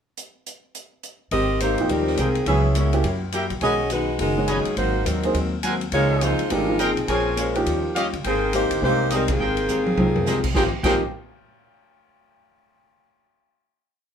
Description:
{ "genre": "jazz, big band swing", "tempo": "208 BPM", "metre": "4/4", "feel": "swing 62% on 8ths", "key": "Ab major", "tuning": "A4 = 440 Hz", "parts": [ { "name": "swinging big-band drum kit", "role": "drums", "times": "0.2-10.9 s", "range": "crash cymbal, hi-hat, kick drum, ride cymbal, snare drum, toms", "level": "-29 LUFS", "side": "equal", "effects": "none" }, { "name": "warm saxophone section", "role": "melody", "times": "1.3-11.0 s", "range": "Eb3 to D#5", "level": "-23 LUFS", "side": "equal", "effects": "none" }, { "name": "vintage hollow-body jazz guitar", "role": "accompaniment", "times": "1.3-11.0 s", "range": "Ab2 to C5", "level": "-30 LUFS", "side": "left 5 dB", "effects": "none" }, { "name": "upright bass", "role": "bass", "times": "1.3-11.0 s", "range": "F#1 to Gb2", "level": "-26 LUFS", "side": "right 1 dB", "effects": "none" }, { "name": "warm upright piano", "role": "accompaniment", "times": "1.8-11.0 s", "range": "Fb3 to G5", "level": "-26 LUFS", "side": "right 3 dB", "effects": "none" }, { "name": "clear trumpet section", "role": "stabs", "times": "2.2-11.0 s", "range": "G4 to Ab5", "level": "-27 LUFS", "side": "right 1 dB", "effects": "none" } ], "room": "moderate studio reverb, RT60 0.5 s", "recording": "band playing live in one room", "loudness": "-19 LUFS", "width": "side -8 dB against mid", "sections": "0.2-1.3 pickup bar; 1.3-10.5 A section; 10.5-11.7 final chord", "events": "band accent 9.3; drum fill 9.7-10.3", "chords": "0.2 N.C.; 1.3 Abmaj9; 2.5 Dbm7; 3.0 Gb7b9; 3.6 B69; 4.8 Ab9; 5.9 Dbmaj13; 7.1 Bbm9; 7.7 Eb9; 8.2 Abmaj9" }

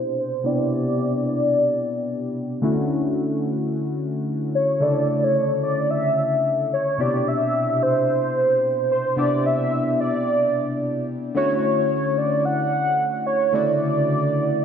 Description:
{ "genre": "amapiano", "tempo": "110 BPM", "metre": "4/4", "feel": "swing 55% on 16ths", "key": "C major", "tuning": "A4 = 437 Hz", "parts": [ { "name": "warm velvety synth lead", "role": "melody", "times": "0.0-14.6 s", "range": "C5 to F#5", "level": "-21 LUFS", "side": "equal", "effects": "chorus, phaser, low-pass filter, tape echo" }, { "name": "warm analog keys", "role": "accompaniment", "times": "0.0-14.6 s", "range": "B2 to A4", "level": "-23 LUFS", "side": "left 1 dB", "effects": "chorus, low-pass filter" } ], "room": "wet plate reverb, RT60 2.5 s", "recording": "dreamy mix soaked in reverb, nothing above 10.7 kHz", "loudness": "-19 LUFS", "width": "side -8 dB against mid", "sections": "0.0-14.6 A section", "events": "filter sweep 0.0-14.6", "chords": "0.0 Cmaj9; 2.6 Dmaj9; 7.0 Cmaj9; 11.4 Dmaj9" }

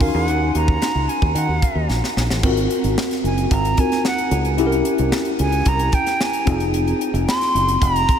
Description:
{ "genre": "polished 1980s jazz-funk pop", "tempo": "111 BPM", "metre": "4/4", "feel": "straight", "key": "unclear", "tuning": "A4 = 439 Hz", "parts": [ { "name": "breathy silver concert flute", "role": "melody", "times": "0.0-8.2 s", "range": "F5 to C6", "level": "-22 LUFS", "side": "right 2 dB", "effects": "diffuse ambient delay" }, { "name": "tine electric piano", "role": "accompaniment", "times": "0.0-8.2 s", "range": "C4 to Bb4", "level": "-22 LUFS", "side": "left 2 dB", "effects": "overdrive, fast stereo tremolo, wide subtle chorus" }, { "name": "fingered electric bass", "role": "bass", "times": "0.0-8.0 s", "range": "F1 to Eb3", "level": "-21 LUFS", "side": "equal", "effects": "none" }, { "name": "tight funk drum kit", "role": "drums", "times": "0.0-8.2 s", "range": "crash cymbal, hi-hat, kick drum, snare drum", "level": "-23 LUFS", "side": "equal", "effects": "none" } ], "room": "moderate huge ambient reverb, RT60 8.1 s", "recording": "dreamy mix soaked in reverb", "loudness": "-16 LUFS", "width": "side -8 dB against mid", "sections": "0.0-2.4 A section; 2.4-8.2 B section", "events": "drum fill 1.9-2.4", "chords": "0.0 Ebm7; 2.4 Ab13; 4.6 C7b9; 6.5 Fm7" }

